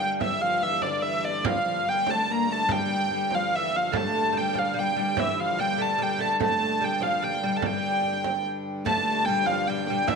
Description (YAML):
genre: medieval dance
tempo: 146 BPM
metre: 3/4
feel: straight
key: unclear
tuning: A4 = 442 Hz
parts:
  - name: dark hurdy-gurdy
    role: melody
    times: 0.0-10.2 s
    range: D5 to Bb5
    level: -25 LUFS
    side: right 1 dB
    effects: none
  - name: dark viola da gamba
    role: second line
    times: 0.0-10.2 s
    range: D3 to Bb3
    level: -32 LUFS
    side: left 5 dB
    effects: none
  - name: hand-pumped harmonium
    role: drone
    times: 0.0-10.2 s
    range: G2 to D3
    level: -34 LUFS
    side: left 1 dB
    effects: none
  - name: frame drum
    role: percussion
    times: 0.2-10.2 s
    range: none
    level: -32 LUFS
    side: right 9 dB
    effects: none
  - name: lute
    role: second line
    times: 3.9-10.2 s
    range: E3 to A3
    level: -33 LUFS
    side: right 9 dB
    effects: none
room: wet echo chamber reverb, RT60 1.8 s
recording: 1960s-style stereo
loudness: -23 LUFS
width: side -5 dB against mid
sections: 0.0-8.9 A section; 8.9-10.2 A section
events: none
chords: none